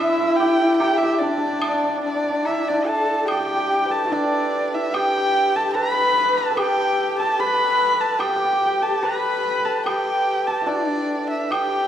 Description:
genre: chinese traditional, Chinese chamber ensemble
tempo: 73 BPM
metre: 2/4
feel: straight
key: D zhi mode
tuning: A4 = 440 Hz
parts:
  - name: warm erhu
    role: melody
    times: 0.0-11.9 s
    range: D5 to B5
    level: -22 LUFS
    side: equal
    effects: none
  - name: dark horsehead fiddle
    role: second line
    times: 0.0-11.9 s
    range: D4 to B4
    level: -25 LUFS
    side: left 5 dB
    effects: none
  - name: hammered dulcimer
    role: second line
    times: 0.0-11.9 s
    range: D4 to B4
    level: -23 LUFS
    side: right 2 dB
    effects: none
  - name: woodblock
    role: percussion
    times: 0.8-11.7 s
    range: none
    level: -32 LUFS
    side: equal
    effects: none
room: wet recital hall reverb, RT60 1.8 s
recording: recorded in a church or concert hall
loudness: -18 LUFS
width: side -10 dB against mid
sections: 0.0-3.3 A section; 3.3-11.9 B section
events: none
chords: none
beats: 0.80 | 1.62 2.44 | 3.28 4.11 | 4.93 5.75 | 6.58 7.39 | 8.21 9.03 | 9.86 10.69 | 11.52

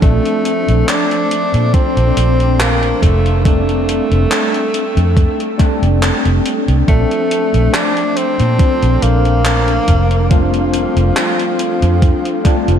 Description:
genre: vaporwave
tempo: 70 BPM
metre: 4/4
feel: swing 53% on 16ths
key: F major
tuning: A4 = 440 Hz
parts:
  - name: clear tenor saxophone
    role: melody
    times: 0.0-12.8 s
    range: F3 to D4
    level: -18 LUFS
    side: equal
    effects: tape echo
  - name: tine electric piano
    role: accompaniment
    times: 0.0-12.8 s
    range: F3 to A4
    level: -19 LUFS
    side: left 1 dB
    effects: medium stereo tremolo, wide subtle chorus, diffuse ambient delay
  - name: warbly tape-like pad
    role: sustained chords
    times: 0.0-12.8 s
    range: D4 to A5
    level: -25 LUFS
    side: left 2 dB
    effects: chorus, built-in reverb
  - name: vintage muted fingered electric bass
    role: bass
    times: 0.0-12.8 s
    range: F1 to Bb2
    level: -14 LUFS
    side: equal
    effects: none
  - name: electronic kick drum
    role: drums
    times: 0.0-12.6 s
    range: none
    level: -13 LUFS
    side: equal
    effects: overdrive
  - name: gated 80s digital drum machine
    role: drums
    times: 0.0-12.8 s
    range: handclaps, hi-hat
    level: -22 LUFS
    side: equal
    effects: gated reverb, overdrive
room: moderate huge ambient reverb, RT60 8.2 s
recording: dreamy mix soaked in reverb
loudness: -11 LUFS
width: side -8 dB against mid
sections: 0.0-12.8 A section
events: none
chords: 0.0 Bbmaj9; 3.5 F69; 6.9 Bbmaj9; 10.3 F69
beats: | 0.02 0.88 1.74 2.60 | 3.45 4.31 5.17 6.02 | 6.88 7.74 8.60 9.45 | 10.31 11.17 12.02

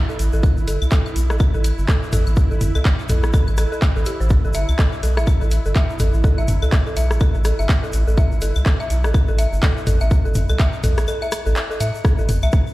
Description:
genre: minimal techno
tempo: 124 BPM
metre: 4/4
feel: swing 59% on 16ths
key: A minor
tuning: A4 = 440 Hz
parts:
  - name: swarming drone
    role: texture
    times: 0.0-12.1 s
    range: E4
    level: -33 LUFS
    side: right 3 dB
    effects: built-in reverb, sidechain pumping
  - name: dark detuned synth bell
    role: riff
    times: 0.1-12.5 s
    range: G4 to E5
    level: -27 LUFS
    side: left 1 dB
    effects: chorus, sidechain pumping, ping-pong delay
  - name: tube shaker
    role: percussion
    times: 0.1-12.7 s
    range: none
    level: -39 LUFS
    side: left 2 dB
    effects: none
  - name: rubbery square bass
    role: bass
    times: 0.2-12.5 s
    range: G1 to A2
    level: -18 LUFS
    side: equal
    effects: sidechain pumping
  - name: booming analog drum machine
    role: drums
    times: 0.2-12.4 s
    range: handclaps, hi-hat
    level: -29 LUFS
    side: equal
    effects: none
  - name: electronic kick drum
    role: drums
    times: 0.4-12.6 s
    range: none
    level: -17 LUFS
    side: equal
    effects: none
  - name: organic electronic drum kit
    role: percussion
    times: 0.4-12.6 s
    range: claves, rim click, toms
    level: -26 LUFS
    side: left 1 dB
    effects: tape echo
room: digital ambience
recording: played on a big sound system in a bare room, large studio reverb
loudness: -16 LUFS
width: side -18 dB against mid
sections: 0.0-12.0 A section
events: break 11.1-12.0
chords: 0.0 A5; 12.0 Am7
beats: | 0.43 0.92 1.40 1.89 | 2.37 2.85 3.34 3.82 | 4.30 4.79 5.27 5.76 | 6.24 6.72 7.21 7.69 | 8.18 8.66 9.14 9.63 | 10.11 10.59 11.08 11.56 | 12.05 12.53

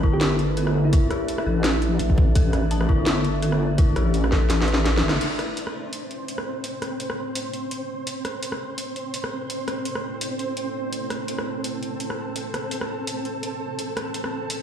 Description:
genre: half-time drum and bass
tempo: 168 BPM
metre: 4/4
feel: swing 55% on 16ths, half-time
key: A minor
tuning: A4 = 443 Hz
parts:
  - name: deep dark ambient pad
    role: sustained chords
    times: 0.0-14.6 s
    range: A3 to E5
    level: -33 LUFS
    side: right 2 dB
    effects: chorus, built-in reverb, sidechain pumping
  - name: dark detuned synth bell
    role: arpeggios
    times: 0.0-5.2 s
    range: E4 to A5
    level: -31 LUFS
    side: left 6 dB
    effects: chorus, tape echo
  - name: deep soft wobble bass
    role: bass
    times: 0.0-5.2 s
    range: G1 to A1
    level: -22 LUFS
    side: equal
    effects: chorus
  - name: electronic kick drum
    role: drums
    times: 0.0-4.4 s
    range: none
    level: -18 LUFS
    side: equal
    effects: none
  - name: flickering grainy texture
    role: texture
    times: 0.0-14.6 s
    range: C4 to C5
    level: -31 LUFS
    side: equal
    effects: built-in reverb
  - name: soft struck synth lead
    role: melody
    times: 0.1-1.9 s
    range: E4 to G4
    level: -31 LUFS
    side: right 1 dB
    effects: chorus, digital delay
  - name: drum and bass drum kit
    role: drums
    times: 0.2-14.6 s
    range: crash cymbal, hi-hat, rim click, snare drum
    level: -28 LUFS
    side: equal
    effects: none
room: moderate lush hall reverb, RT60 1.8 s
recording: played on a big sound system in a bare room, large studio reverb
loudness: -22 LUFS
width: side -9 dB against mid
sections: 0.0-5.2 A section; 5.2-14.6 B section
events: drum fill 4.5-5.2; kick drops out 4.9-5.2; band accent 5.1; filter sweep on ambient pad 5.2-14.6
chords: 0.0 A5; 5.2 Am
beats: 0.21 0.57 | 0.93 1.29 1.64 2.00 | 2.36 2.71 3.07 3.43 | 3.79 4.14 4.50 4.86 | 5.21 5.57 5.93 6.29 | 6.64 7.00 7.36 7.71 | 8.07 8.43 8.79 9.14 | 9.50 9.86 10.21 10.57 | 10.93 11.29 11.64 12.00 | 12.36 12.71 13.07 13.43 | 13.79 14.14 14.50

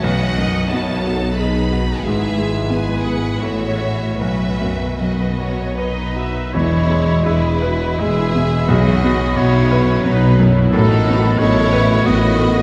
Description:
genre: classical, romantic movement for piano and orchestra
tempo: 73-95 BPM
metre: 3/4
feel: rubato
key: E major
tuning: A4 = 441 Hz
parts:
  - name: clear baby grand piano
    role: melody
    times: 0.0-12.6 s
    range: B1 to D#5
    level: -21 LUFS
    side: equal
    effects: none
  - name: rich studio violin section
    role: melody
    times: 0.0-12.6 s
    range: A4 to B5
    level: -32 LUFS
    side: equal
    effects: none
  - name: warm studio violin section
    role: second line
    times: 0.0-12.6 s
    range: D#4 to D#5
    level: -29 LUFS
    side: equal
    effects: none
  - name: warm studio viola section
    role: accompaniment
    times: 0.0-12.6 s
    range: C#4 to E5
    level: -29 LUFS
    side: equal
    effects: none
  - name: dark French horn section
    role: sustained chords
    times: 0.0-11.0 s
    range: F#3 to F#4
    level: -34 LUFS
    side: equal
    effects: none
  - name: clear studio cello section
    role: bass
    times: 0.0-12.6 s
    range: E2 to B2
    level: -24 LUFS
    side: equal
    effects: none
  - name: rich studio double bass section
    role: bass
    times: 0.0-12.6 s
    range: E1 to B1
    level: -26 LUFS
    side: equal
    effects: none
  - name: clear oboe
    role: second line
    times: 5.8-12.6 s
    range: A4 to E5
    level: -27 LUFS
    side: equal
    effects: none
  - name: flute section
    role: second line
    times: 6.5-12.6 s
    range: B5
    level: -32 LUFS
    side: equal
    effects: none
  - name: mellow bassoon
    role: accompaniment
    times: 6.5-12.6 s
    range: D#3 to G#3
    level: -28 LUFS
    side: equal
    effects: none
  - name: mellow trombone section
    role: sustained chords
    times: 6.5-11.0 s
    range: none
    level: barely audible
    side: none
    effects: none
  - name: mellow tuba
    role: bass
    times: 6.5-12.6 s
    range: E1 to B1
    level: -25 LUFS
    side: equal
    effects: none
  - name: timpani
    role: percussion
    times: 8.7-9.7 s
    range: B2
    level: -27 LUFS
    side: equal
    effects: none
room: wet church reverb, RT60 3.5 s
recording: none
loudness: -17 LUFS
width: mono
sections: 0.0-6.5 A section; 6.5-12.6 B section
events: none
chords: 0.0 B; 2.0 E/G#; 3.4 F#m/A; 4.2 B; 6.5 E; 8.7 B; 10.7 B7/A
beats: | 0.03 0.70 1.38 | 2.04 2.71 3.41 | 4.20 5.00 5.77 | 6.54 7.26 8.01 | 8.69 9.37 10.05 | 10.73 11.40 12.04

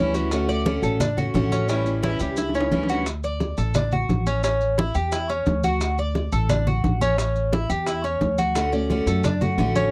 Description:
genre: latin, Cuban son and guajira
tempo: 175 BPM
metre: 4/4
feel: straight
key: D major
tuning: A4 = 440 Hz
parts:
  - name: picked old ladder-braced acoustic guitar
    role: accompaniment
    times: 0.0-3.1, 8.6-9.9 s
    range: D3 to F#4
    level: -28 LUFS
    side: equal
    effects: none
  - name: Cuban tres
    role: arpeggios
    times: 0.0-9.9 s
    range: C#4 to D5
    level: -28 LUFS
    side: equal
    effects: none
  - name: upright bass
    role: bass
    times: 0.0-9.9 s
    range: A1 to F#2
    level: -28 LUFS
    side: equal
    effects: none
  - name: bongos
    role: percussion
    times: 0.1-9.9 s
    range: none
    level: -33 LUFS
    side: equal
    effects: none
  - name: maracas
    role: percussion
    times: 0.1-9.9 s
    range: none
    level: -40 LUFS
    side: equal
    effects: none
  - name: congas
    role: percussion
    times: 0.3-9.9 s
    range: none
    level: -29 LUFS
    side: equal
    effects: none
room: light reverb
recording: dry, close 1970s-style studio recording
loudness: -23 LUFS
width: mono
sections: 0.0-3.1 A section; 3.1-9.9 A section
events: drum fill 2.0-3.1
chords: 0.3 Dmaj7; 1.7 A7; 3.1 Dmaj7; 4.4 A7; 5.8 Dmaj7; 7.2 A7; 8.6 Dmaj7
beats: | 0.32 0.66 1.00 1.35 | 1.69 2.03 2.38 2.72 | 3.06 3.41 3.75 4.09 | 4.44 4.78 5.12 5.47 | 5.81 6.15 6.50 6.84 | 7.18 7.53 7.87 8.21 | 8.56 8.90 9.24 9.59

